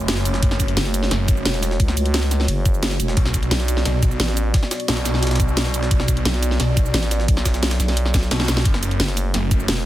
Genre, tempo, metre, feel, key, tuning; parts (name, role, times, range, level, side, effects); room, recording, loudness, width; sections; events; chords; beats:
dark technical drum and bass; 175 BPM; 4/4; straight; F# minor; A4 = 440 Hz
dark analog pad; sustained chords; 0.0-9.9 s; A3 to D5; -27 LUFS; right 2 dB; chorus, sidechain pumping
snarling distorted saw bass; bass; 0.0-9.7 s; F#1 to B1; -22 LUFS; equal; distortion, overdrive, sidechain pumping
drum and bass drum kit; drums; 0.0-9.8 s; hi-hat, shaker, snare drum; -24 LUFS; equal
jungle sampler-style drum kit; drums; 0.1-9.9 s; ride cymbal, snare drum; -32 LUFS; right 1 dB
electronic kick drum; drums; 0.4-9.6 s; -19 LUFS; equal
growling FM bass; bass; 0.8-9.9 s; E1 to C#2; -21 LUFS; equal
light reverb; dense, heavily limited modern master; -17 LUFS; side -14 dB against mid
0.0-8.7 A section; 8.7-9.9 A section
drop 0.0-8.7, 8.7-9.9; drum fill 8.1-8.7
0.0 F#m; 3.2 Bm; 8.7 F#m
0.08 | 0.43 0.77 1.11 1.46 | 1.80 2.14 2.48 2.83 | 3.17 3.51 3.85 4.20 | 4.54 4.88 5.23 5.57 | 5.91 6.25 6.60 6.94 | 7.28 7.63 7.97 8.31 | 8.65 9.00 9.34 9.68